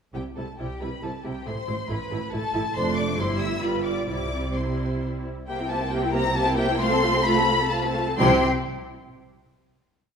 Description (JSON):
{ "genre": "quick classical-period movement for string orchestra", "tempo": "126-140 BPM", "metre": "3/4", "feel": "rubato", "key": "C major", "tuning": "A4 = 438 Hz", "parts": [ { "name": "warm symphonic violin section", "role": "melody", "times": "0.1-8.4 s", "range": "G5 to E6", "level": "-27 LUFS", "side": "left 4 dB", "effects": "none" }, { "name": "rich symphonic violin section", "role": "second line", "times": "0.1-8.4 s", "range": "G4 to A5", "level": "-30 LUFS", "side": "left 3 dB", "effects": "none" }, { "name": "rich symphonic viola section", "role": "accompaniment", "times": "0.1-8.4 s", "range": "G3 to A4", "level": "-27 LUFS", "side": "right 2 dB", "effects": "none" }, { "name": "rich symphonic cello section", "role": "bass", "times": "0.1-8.4 s", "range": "F2 to C3", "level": "-29 LUFS", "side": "right 2 dB", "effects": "none" }, { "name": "warm symphonic double bass section", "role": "bass", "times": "0.1-8.4 s", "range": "F1 to C2", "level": "-32 LUFS", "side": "right 2 dB", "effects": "none" } ], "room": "wet recital hall reverb, RT60 1.6 s", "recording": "recorded in a church or concert hall", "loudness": "-22 LUFS", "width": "side -6 dB against mid", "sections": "0.1-5.5 A section; 5.5-8.2 coda; 8.2-9.6 final chord", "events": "none", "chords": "0.1 C; 1.5 Am; 2.8 Dm7/F; 3.2 C/G; 3.6 G7; 4.1 C; 5.5 C7; 6.8 F/C; 8.2 C" }